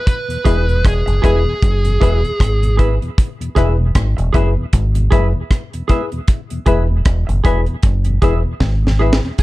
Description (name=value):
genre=roots reggae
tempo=77 BPM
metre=4/4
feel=swing 57% on 16ths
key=E major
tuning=A4 = 439 Hz
part: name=fuzz lead guitar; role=melody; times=0.0-2.8, 9.4 s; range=G#4 to B4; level=-21 LUFS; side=right 1 dB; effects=distortion, dub echo
part: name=deep reggae drum kit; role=drums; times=0.1-9.4 s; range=hi-hat, kick drum, rim click, snare drum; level=-15 LUFS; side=equal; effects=none
part: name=mellow tonewheel organ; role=accompaniment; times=0.3-9.3 s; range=E2 to E4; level=-26 LUFS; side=left 2 dB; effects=chorus vibrato, slow rotary speaker, analog delay
part: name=semi-hollow electric guitar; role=accompaniment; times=0.4-9.2 s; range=G#4 to E5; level=-25 LUFS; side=right 5 dB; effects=lush chorus, dub echo
part: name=reed electric piano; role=stabs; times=0.5-9.2 s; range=E4 to B4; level=-22 LUFS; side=left 6 dB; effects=none
part: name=deep dub fingered electric bass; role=bass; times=0.5-9.2 s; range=E1 to G#1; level=-15 LUFS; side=equal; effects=none
room=light reverb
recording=dark, warm production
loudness=-13 LUFS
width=side -18 dB against mid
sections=0.0-9.4 A section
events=drum fill 8.6-9.4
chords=0.0 E